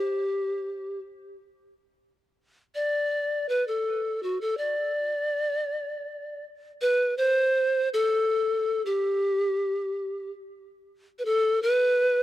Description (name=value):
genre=andean folk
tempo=81 BPM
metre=3/4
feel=straight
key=unclear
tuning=A4 = 440 Hz
part: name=polished pan flute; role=solo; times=0.0-12.2 s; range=F#4 to D5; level=-24 LUFS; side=equal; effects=tape echo
room=light reverb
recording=dry, close 1970s-style studio recording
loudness=-24 LUFS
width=side -14 dB against mid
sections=0.0-6.8 A section; 6.8-12.2 B section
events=none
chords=none